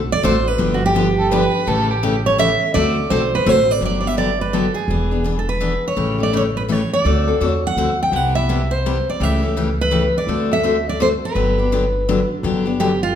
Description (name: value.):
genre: acoustic string swing (jazz manouche).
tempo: 167 BPM.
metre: 3/4.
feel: swing 62% on 8ths.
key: G major.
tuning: A4 = 440 Hz.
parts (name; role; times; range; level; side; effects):
upright bass; bass; 0.0-13.2 s; E1 to E2; -22 LUFS; equal; none.
picked steel-string acoustic guitar; melody; 0.1-13.2 s; F4 to G5; -19 LUFS; right 2 dB; none.
picked steel-string acoustic guitar; accompaniment; 0.2-12.9 s; C3 to A4; -20 LUFS; left 4 dB; none.
warm violin; second line; 1.2-2.1 s; G4 to B4; -22 LUFS; right 3 dB; none.
room: wet recital hall reverb, RT60 1.4 s.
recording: recorded in a church or concert hall.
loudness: -16 LUFS.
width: side -9 dB against mid.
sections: 0.0-3.8 A section; 3.8-12.4 B section.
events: none.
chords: 0.0 D7; 0.6 G7; 1.7 A7; 2.7 D7; 3.8 Gmaj7; 4.9 E7; 6.0 A7; 7.1 D7; 8.1 Cmaj7; 9.2 A7/C#; 10.3 D7; 11.4 Gmaj7.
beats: 0.24 | 0.60 0.96 1.31 | 1.67 2.03 2.39 | 2.75 3.11 3.46 | 3.82 4.18 4.54 | 4.90 5.26 5.62 | 5.98 6.34 6.70 | 7.06 7.42 7.78 | 8.13 8.49 8.85 | 9.21 9.57 9.93 | 10.29 10.65 11.00 | 11.36 11.72 12.08 | 12.44 12.79 13.15.